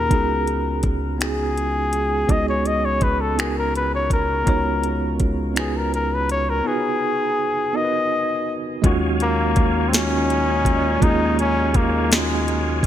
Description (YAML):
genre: slow six-eight R&B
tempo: 55 BPM (dotted quarters)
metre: 6/8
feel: straight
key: Eb minor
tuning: A4 = 440 Hz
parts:
  - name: warm flugelhorn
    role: melody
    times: 0.0-12.9 s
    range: Ab3 to Eb5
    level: -22 LUFS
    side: left 2 dB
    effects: ping-pong delay
  - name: tine electric piano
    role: accompaniment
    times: 0.0-12.9 s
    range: Bb2 to Db5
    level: -25 LUFS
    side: right 2 dB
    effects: overdrive, fast stereo tremolo
  - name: rubbery square bass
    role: bass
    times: 0.0-12.9 s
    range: Db2 to Eb2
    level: -24 LUFS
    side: equal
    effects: none
  - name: smooth R&B drum kit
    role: drums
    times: 0.1-12.9 s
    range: finger snaps, hi-hat, kick drum, snare drum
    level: -21 LUFS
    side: equal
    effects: gated reverb
  - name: tonewheel organ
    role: sustained chords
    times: 8.8-12.9 s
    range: Gb3 to Ab5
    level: -29 LUFS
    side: right 1 dB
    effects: chorus vibrato, fast rotary speaker
  - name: dark horn section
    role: stabs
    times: 9.9-12.8 s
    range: Bb2 to Eb4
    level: -29 LUFS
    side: right 7 dB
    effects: none
room: light reverb, digital ambience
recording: bright 1980s-style digital production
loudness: -18 LUFS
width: side -11 dB against mid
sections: 0.0-8.8 A section; 8.8-12.9 B section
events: none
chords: 0.1 Db9sus4; 8.8 Ebm11